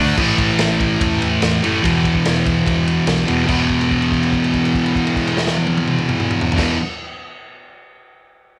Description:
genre	garage rock duo or trio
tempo	144 BPM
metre	4/4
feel	straight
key	unclear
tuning	A4 = 441 Hz
part	thick fuzz guitar	riff	0.0-6.8 s	E2 to D4	-18 LUFS	equal	distortion
part	hollow-body short-scale picked electric bass	bass	0.0-6.7 s	E1 to E2	-28 LUFS	equal	none
part	crunchy breakbeat drum kit	drums	0.2-6.7 s	crash cymbal, kick drum, ride cymbal, snare drum, toms	-24 LUFS	equal	none
room	light reverb, studio reverb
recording	none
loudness	-17 LUFS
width	mono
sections	0.2-3.5 A section; 3.5-6.8 B section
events	held note 3.5-6.6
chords	0.2 A5; 1.8 E5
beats	| 0.18 0.59 1.00 1.42 | 1.83 2.25 2.66 3.08 | 3.49 3.91 4.32 4.74 | 5.15 5.57 5.99 6.40

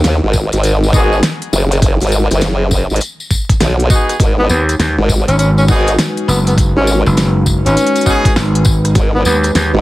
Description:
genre	glitch hop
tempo	101 BPM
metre	4/4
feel	swing 64% on 16ths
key	G# minor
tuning	A4 = 440 Hz
part	formant-sweep wobble bass	bass	0.0-9.8 s	F#1 to D#2	-12 LUFS	equal	chorus, tube saturation
part	pop drum kit	drums	0.0-9.7 s	hi-hat, rim click, snare drum	-18 LUFS	equal	none
part	tambourine	percussion	0.0-9.7 s	none	-24 LUFS	left 3 dB	none
part	electronic kick drum	drums	0.3-9.1 s	none	-13 LUFS	equal	none
part	bright horn section	stabs	0.9-8.3 s	B3 to G#4	-19 LUFS	equal	sidechain pumping, low-pass filter, ping-pong delay
part	dark analog pad	sustained chords	4.8-9.8 s	G#3 to B4	-20 LUFS	equal	chorus, sidechain pumping
part	breathy tenor saxophone	melody	4.4-9.4 s	B3 to C#4	-18 LUFS	left 1 dB	ping-pong delay
part	gritty slap bass	bass	4.5-9.7 s	F#1 to D#2	-13 LUFS	equal	overdrive
room	small room ambience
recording	vinyl crackle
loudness	-10 LUFS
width	side -17 dB against mid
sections	0.0-9.8 A section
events	none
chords	0.0 G#m7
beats	0.04 0.64 1.23 | 1.82 2.42 3.01 3.61 | 4.20 4.79 5.39 5.98 | 6.58 7.17 7.76 8.36 | 8.95 9.55

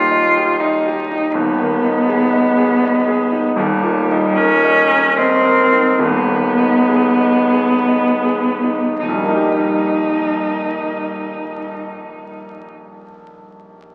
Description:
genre	classical, romantic duo for cello and grand piano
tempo	51-82 BPM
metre	3/4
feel	rubato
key	Eb major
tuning	A4 = 441 Hz
part	rich cello	melody	0.0-12.7 s	G3 to F4	-18 LUFS	equal	none
part	bright grand piano	accompaniment	0.0-13.9 s	Eb1 to Eb5	-20 LUFS	equal	none
room	wet scoring stage reverb, RT60 1.7 s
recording	very old 78 rpm record, vinyl crackle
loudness	-16 LUFS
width	mono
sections	0.0-9.0 A section; 9.0-12.4 B section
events	slowing down 2.4-9.0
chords	0.0 Eb; 1.3 Abm/Eb; 3.6 Eb7; 6.0 Abm/Eb; 9.0 Eb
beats	0.60 | 1.34 2.08 2.82 | 3.57 4.38 5.18 | 6.00 6.89 7.88 | 9.02 10.15 11.28

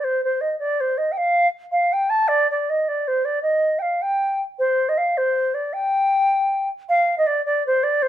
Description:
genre	celtic folk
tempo	105 BPM (dotted quarters)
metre	6/8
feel	straight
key	unclear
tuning	A4 = 440 Hz
part	baroque flute	solo	0.0-8.1 s	C5 to A5	-18 LUFS	equal	none
room	light reverb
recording	minimal, uncompressed stereo recording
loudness	-18 LUFS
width	side -11 dB against mid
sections	0.0-6.9 A section; 6.9-8.1 B section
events	none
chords	none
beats	| 0.04 0.60 | 1.17 1.74 | 2.31 2.88 | 3.46 4.03 | 4.59 5.17 | 5.73 6.30 | 6.87 7.44 | 8.00

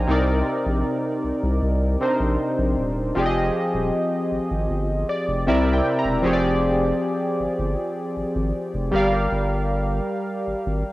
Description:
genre	R&B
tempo	78 BPM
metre	4/4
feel	straight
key	F dorian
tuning	A4 = 439 Hz
part	warm analog keys	accompaniment	0.0-10.9 s	C3 to Bb5	-21 LUFS	equal	chorus, cassette tape
part	saturated sub bass	bass	0.0-10.8 s	Eb1 to C2	-24 LUFS	equal	none
room	moderate spring reverb, RT60 2.4 s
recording	home recording on cassette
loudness	-20 LUFS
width	side -17 dB against mid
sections	0.0-6.2 A section; 6.2-10.9 B section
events	synth keys fill 4.7-6.2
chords	0.1 Cm7; 3.2 Fm7; 5.5 C7; 6.2 Fm69; 8.9 Gm7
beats	| 0.09 0.85 1.62 2.39 | 3.16 3.93 4.70 5.47 | 6.24 7.01 7.78 8.55 | 9.32 10.09 10.85

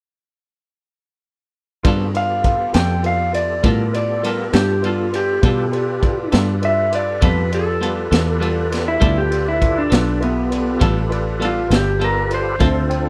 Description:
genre	slow blues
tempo	67 BPM (dotted quarters)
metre	12/8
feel	straight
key	G mixolydian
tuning	A4 = 440 Hz
part	clear concert grand piano	accompaniment	1.8-13.1 s	F4 to G5	-30 LUFS	equal	none
part	fingered electric bass	bass	1.8-13.1 s	G1 to B2	-23 LUFS	equal	none
part	raw garage drum kit	drums	1.8-13.0 s	kick drum, ride cymbal, snare drum	-23 LUFS	equal	none
part	clean electric guitar	accompaniment	1.9-12.8 s	D3 to A4	-27 LUFS	equal	tremolo
part	bright tonewheel organ	sustained chords	1.9-13.1 s	B3 to B4	-30 LUFS	equal	chorus vibrato, slow rotary speaker
part	electric guitar through a small old amp	melody	2.2-13.1 s	B3 to G5	-23 LUFS	equal	warbly pitch drift
room	little or no reverb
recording	none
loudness	-18 LUFS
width	mono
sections	1.8-13.1 A section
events	clean electric guitar solo 1.8-13.1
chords	1.8 G9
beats	| 1.84 2.73 3.63 4.53 | 5.43 6.32 7.22 8.12 | 9.02 9.91 10.81 11.71 | 12.61

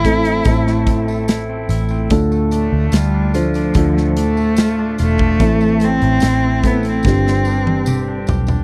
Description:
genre	pop ballad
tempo	73 BPM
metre	4/4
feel	straight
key	A minor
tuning	A4 = 440 Hz
part	rich cello	melody	0.0-8.3 s	F3 to E4	-21 LUFS	equal	none
part	felt-muted upright piano	accompaniment	0.0-8.6 s	G2 to C5	-22 LUFS	equal	none
part	twangy electric guitar	arpeggios	0.0-8.6 s	G2 to G4	-29 LUFS	equal	none
part	vintage muted fingered electric bass	bass	0.0-8.6 s	E1 to D2	-21 LUFS	equal	none
part	modern studio drum kit	drums	0.0-8.6 s	hi-hat, kick drum, snare drum, toms	-21 LUFS	equal	none
part	tambourine	percussion	0.1-8.6 s	none	-42 LUFS	equal	none
room	little or no reverb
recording	dry, close 1970s-style studio recording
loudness	-16 LUFS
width	mono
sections	0.0-8.6 A section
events	drum fill 7.0-8.6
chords	0.0 Am; 2.1 Dm; 5.4 Am; 7.0 G7sus4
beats	0.47 1.29 | 2.11 2.93 3.76 4.58 | 5.40 6.22 7.04 7.87

